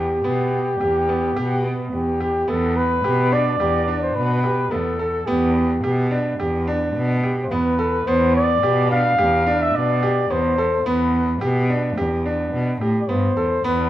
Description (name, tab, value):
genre	contemporary instrumental, chamber music in an uneven meter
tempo	107 BPM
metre	5/4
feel	straight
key	E phrygian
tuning	A4 = 445 Hz
part	mellow flugelhorn	melody	0.0-13.9 s	G4 to F5	-21 LUFS	left 1 dB	none
part	bright concert grand piano	arpeggios	0.0-13.9 s	B3 to A4	-23 LUFS	right 2 dB	none
part	warm cello	bass	0.0-13.9 s	E2 to B2	-22 LUFS	equal	none
room	moderate recital hall reverb, RT60 1.4 s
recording	close, detailed microphones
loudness	-18 LUFS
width	side -13 dB against mid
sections	0.0-2.5 A section; 2.5-13.9 B section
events	none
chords	0.0 Em; 2.5 Em7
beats	0.25 0.81 1.36 1.92 | 2.48 3.04 3.60 4.16 4.72 | 5.28 5.84 6.40 6.96 7.51 | 8.07 8.63 9.19 9.75 10.31 | 10.87 11.42 11.98 12.54 13.09 | 13.65